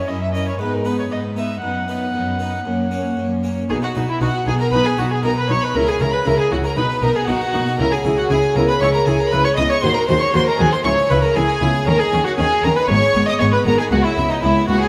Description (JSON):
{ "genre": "classical, baroque-style concerto movement with solo episodes", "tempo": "117 BPM", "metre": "4/4", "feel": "straight", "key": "B major", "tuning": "A4 = 440 Hz", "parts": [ { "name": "dark violin", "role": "melody", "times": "0.0-14.9 s", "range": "D#4 to F#5", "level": "-24 LUFS", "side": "equal", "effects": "none" }, { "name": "rich chamber violin section", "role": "melody", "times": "0.0-14.9 s", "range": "A#4 to D#6", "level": "-28 LUFS", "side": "equal", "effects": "none" }, { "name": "warm chamber violin section", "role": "second line", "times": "0.0-14.9 s", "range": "C#4 to D#5", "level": "-26 LUFS", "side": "equal", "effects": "none" }, { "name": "dark chamber viola section", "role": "accompaniment", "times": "0.0-14.8 s", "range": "A#3 to F#4", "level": "-28 LUFS", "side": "equal", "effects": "none" }, { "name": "harpsichord", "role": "accompaniment", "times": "0.0-14.9 s", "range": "C#2 to C#5", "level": "-26 LUFS", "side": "equal", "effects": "none" }, { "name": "warm chamber cello section", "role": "bass", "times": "0.0-14.8 s", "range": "C#2 to D#3", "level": "-25 LUFS", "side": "equal", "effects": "none" }, { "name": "rich chamber double bass section", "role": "bass", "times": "3.7-14.8 s", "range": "G#1 to D#2", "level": "-27 LUFS", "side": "equal", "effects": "none" } ], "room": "wet scoring stage reverb, RT60 2.0 s", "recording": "none", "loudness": "-18 LUFS", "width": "mono", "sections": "0.0-3.7 A section; 3.7-14.9 B section", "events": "none", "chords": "0.0 F#7; 0.6 G#m; 1.6 B/F#; 2.7 F#; 3.7 B; 5.7 F#5/C#; 6.8 B; 7.8 C#m; 9.8 G#5/D#; 10.8 C#m; 11.9 D#m7; 12.9 G#m; 13.9 C#m7", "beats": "0.09 0.60 1.11 | 1.63 2.15 2.67 3.18 | 3.70 4.21 4.72 5.23 | 5.75 6.26 6.77 7.28 | 7.79 8.30 8.81 9.32 | 9.83 10.34 10.85 11.36 | 11.87 12.38 12.89 13.40 | 13.91 14.43" }